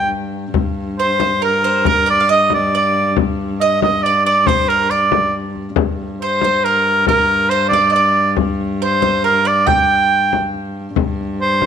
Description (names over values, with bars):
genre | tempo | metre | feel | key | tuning
medieval dance | 138 BPM | 3/4 | straight | G minor | A4 = 441 Hz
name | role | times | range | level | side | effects
bright shawm | melody | 0.0-11.7 s | Bb4 to G5 | -14 LUFS | right 2 dB | none
bowl-back mandolin | second line | 0.0-10.5 s | Bb4 to G5 | -22 LUFS | right 7 dB | none
warm viola da gamba | drone | 0.0-11.7 s | G2 | -22 LUFS | left 2 dB | none
frame drum | percussion | 0.1-11.7 s | none | -20 LUFS | left 7 dB | none
room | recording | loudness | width
moderate echo chamber reverb, RT60 1.6 s, small room ambience | 1960s-style stereo with parts hard left and right | -13 LUFS | side -8 dB against mid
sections
0.5-11.0 A section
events
none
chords
none